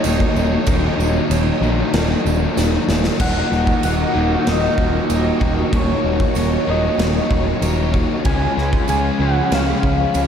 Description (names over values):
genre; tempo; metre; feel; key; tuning
rock, shoegaze and dream pop; 95 BPM; 4/4; straight; Eb minor; A4 = 440 Hz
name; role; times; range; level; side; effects
soft struck synth lead; melody; 0.0-10.3 s; Db5 to Ab5; -24 LUFS; left 1 dB; chorus, phaser, analog delay
string machine, violas; sustained chords; 0.0-10.3 s; F3 to Db6; -26 LUFS; right 1 dB; ensemble chorus
overdriven electric guitar; riff; 0.0-10.3 s; Eb2 to Db4; -24 LUFS; right 1 dB; none
overdriven semi-hollow guitar; riff; 0.0-10.3 s; Eb2 to Ab4; -23 LUFS; left 6 dB; lush chorus
twangy electric guitar; riff; 0.0-10.3 s; Eb2 to Ab4; -27 LUFS; right 7 dB; reverse reverb
growling picked electric bass; bass; 0.0-10.3 s; Eb1 to Db2; -21 LUFS; equal; overdrive
gated 80s drum kit; drums; 0.0-10.3 s; crash cymbal, kick drum, snare drum; -22 LUFS; equal; none
tambourine; percussion; 0.0-10.3 s; none; -36 LUFS; right 14 dB; none
room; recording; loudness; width
moderate lush hall reverb, RT60 2.8 s; dreamy mix soaked in reverb; -15 LUFS; side -8 dB against mid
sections
0.0-3.2 A section; 3.2-10.3 B section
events
drum fill 2.6-3.2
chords
0.0 Ebm7; 8.2 Db7